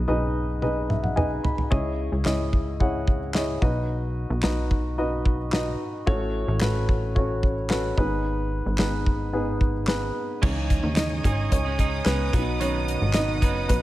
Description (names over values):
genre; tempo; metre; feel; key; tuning
piano-driven pop; 110 BPM; 4/4; straight; C# minor; A4 = 436 Hz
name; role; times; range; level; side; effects
dark upright piano; accompaniment; 0.0-13.8 s; G#2 to B5; -27 LUFS; left 1 dB; none
plucky analog bass; bass; 0.0-13.8 s; F#1 to D#2; -27 LUFS; equal; none
damped 70s drum kit; drums; 0.6-13.8 s; crash cymbal, handclaps, hi-hat, kick drum, snare drum, toms; -24 LUFS; equal; none
warm studio string section; sustained chords; 10.4-13.8 s; B4 to D#6; -32 LUFS; right 1 dB; none
direct-recorded clean electric guitar; riff; 10.4-13.8 s; B2 to B4; -30 LUFS; right 7 dB; spring reverb
room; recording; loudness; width
light reverb; none; -22 LUFS; side -16 dB against mid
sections
0.0-10.4 A section; 10.4-13.8 B section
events
drum fill 0.6-1.7; upright piano fill 0.6-1.7; upright piano solo 10.4-13.8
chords
0.0 G#m/B; 1.7 C#madd9; 3.6 B; 6.1 F#m/A; 8.0 G#m; 10.4 C#madd9; 12.3 B